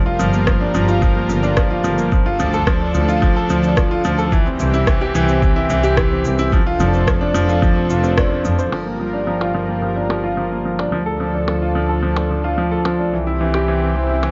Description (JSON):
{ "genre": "piano and strings electronica", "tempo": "109 BPM", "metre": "4/4", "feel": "straight", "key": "G dorian", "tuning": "A4 = 439 Hz", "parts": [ { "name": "lush unison pad", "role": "sustained chords", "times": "0.0-14.3 s", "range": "E3 to Bb4", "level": "-27 LUFS", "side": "equal", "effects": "chorus, sidechain pumping" }, { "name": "clear upright piano", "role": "riff", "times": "0.1-14.3 s", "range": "E3 to C5", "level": "-21 LUFS", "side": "equal", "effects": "low-pass filter, digital delay" }, { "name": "rich symphonic double bass section", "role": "bass", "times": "0.2-14.3 s", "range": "F1 to F2", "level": "-24 LUFS", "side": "equal", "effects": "sidechain pumping" }, { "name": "minimal click drum kit", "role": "drums", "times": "0.2-14.3 s", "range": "crash cymbal, percussion blips, rim click, shaker", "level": "-26 LUFS", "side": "equal", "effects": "low-pass filter on perc, small room ambience, low-pass filter on snare, low-pass filter on cymbals" }, { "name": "electronic kick drum", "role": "drums", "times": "0.5-8.3 s", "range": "none", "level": "-20 LUFS", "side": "equal", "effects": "small room ambience" } ], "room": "light reverb", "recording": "dark, warm production, nothing above 7.6 kHz", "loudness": "-17 LUFS", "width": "mono", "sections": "0.0-8.7 A section; 8.7-14.3 B section", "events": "band accent 8.2; filter sweep on upright piano 8.7-14.3", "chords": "0.0 Gm7; 2.1 Dm; 4.3 C; 6.5 F6; 8.7 Gm7; 10.9 Dm; 13.1 C" }